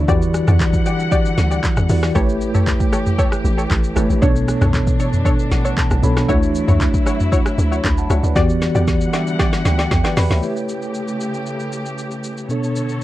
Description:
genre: amapiano.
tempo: 116 BPM.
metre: 4/4.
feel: straight.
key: E dorian.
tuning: A4 = 440 Hz.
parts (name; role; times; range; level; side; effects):
mellow tine electric piano; accompaniment; 0.0-13.0 s; B2 to B5; -20 LUFS; equal; medium stereo tremolo.
muted studio string section; sustained chords; 0.0-13.0 s; C#3 to F#5; -27 LUFS; left 1 dB; sidechain pumping.
punchy chord stab; stabs; 0.0-10.2 s; D4 to D5; -25 LUFS; left 2 dB; chorus, analog delay.
hollow log drum bass; bass; 0.0-10.4 s; G1 to E2; -18 LUFS; equal; none.
afro-pop drum kit; drums; 0.1-13.0 s; handclaps, hi-hat, kick drum, rim click, shaker, snare drum, toms; -19 LUFS; equal; overdrive, vintage 12-bit sampler grit.
room: light reverb.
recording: dark, warm production, vinyl crackle.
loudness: -15 LUFS.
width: side -15 dB against mid.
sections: 0.0-10.4 A section; 10.4-13.0 B section.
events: drop 0.0-10.4; tine electric piano fill 5.3-6.3, 8.9-10.4; drum fill 8.4-10.4.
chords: 0.1 Em9; 2.2 A7; 4.2 Bm9; 6.3 Dmaj9; 8.4 Em9; 10.4 A7; 12.5 Bm9.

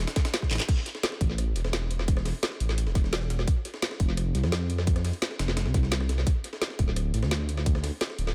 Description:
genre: liquid drum and bass.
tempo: 172 BPM.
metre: 4/4.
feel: straight.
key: A minor.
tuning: A4 = 440 Hz.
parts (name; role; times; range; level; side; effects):
dark detuned saw bass; bass; 0.0-8.3 s; D1 to F2; -30 LUFS; equal; none.
breakbeat sampler-style drum kit; drums; 0.1-8.3 s; hi-hat, snare drum; -39 LUFS; equal; high-pass filter on hats, high-pass filter on snare, high-pass filter on room, tape echo.
drum and bass drum kit; drums; 0.2-8.3 s; crash cymbal, handclaps, hi-hat, rim click, snare drum; -35 LUFS; equal; tape echo.
electronic kick drum; drums; 0.2-7.7 s; none; -27 LUFS; equal; none.
room: little or no reverb.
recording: echo-heavy mix.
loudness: -28 LUFS.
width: mono.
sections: 0.0-8.3 A section.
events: drum fill 0.5.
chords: none.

